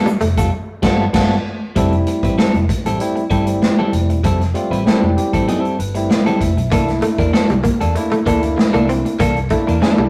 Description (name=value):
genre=funk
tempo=97 BPM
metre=4/4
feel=straight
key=unclear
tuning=A4 = 438 Hz
part: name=clean electric guitar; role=accompaniment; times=0.0-10.0 s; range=E3 to B4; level=-23 LUFS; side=equal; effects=none
part: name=barky tine electric piano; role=stabs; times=0.0-10.1 s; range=F3 to E5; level=-23 LUFS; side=equal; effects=overdrive, analog delay
part: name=direct-recorded clean electric guitar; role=riff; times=0.1-0.3, 6.7-10.1 s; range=G3 to C4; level=-23 LUFS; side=equal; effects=spring reverb
part: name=swinging big-band drum kit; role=drums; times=0.1-10.0 s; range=crash cymbal, hi-hat, kick drum, snare drum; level=-21 LUFS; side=equal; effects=none
part: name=tube shaker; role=percussion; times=0.1-0.5 s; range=none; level=-44 LUFS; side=equal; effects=none
part: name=vintage muted fingered electric bass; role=bass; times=0.2-10.1 s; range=E1 to E2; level=-23 LUFS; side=equal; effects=none
room=moderate studio reverb, RT60 0.6 s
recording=rough rehearsal-room recording, warm saturation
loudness=-16 LUFS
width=mono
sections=0.0-1.8 A section; 1.8-10.1 B section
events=band accent 0.5-1.8; tine electric piano fill 4.9-6.7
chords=0.0 G9; 1.8 Fmaj9; 6.7 C13